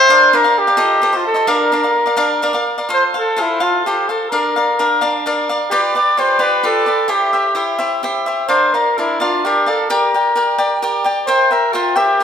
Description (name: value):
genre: mexican folk, mariachi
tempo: 86 BPM (dotted quarters)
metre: 6/8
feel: straight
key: F major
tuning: A4 = 445 Hz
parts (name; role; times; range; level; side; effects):
- mellow trumpet; melody; 0.0-12.2 s; E4 to D5; -14 LUFS; equal; none
- cavaquinho; accompaniment; 0.0-12.2 s; D4 to G5; -17 LUFS; equal; none
room: wet recital hall reverb, RT60 1.7 s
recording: none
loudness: -13 LUFS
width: side -8 dB against mid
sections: 0.0-2.9 A section; 2.9-12.2 B section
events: none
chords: 0.1 Bb; 0.8 F7; 1.5 Bb; 2.9 F; 4.3 Bb; 5.7 G7; 7.1 C; 8.5 Bb; 9.9 Gm; 11.3 C7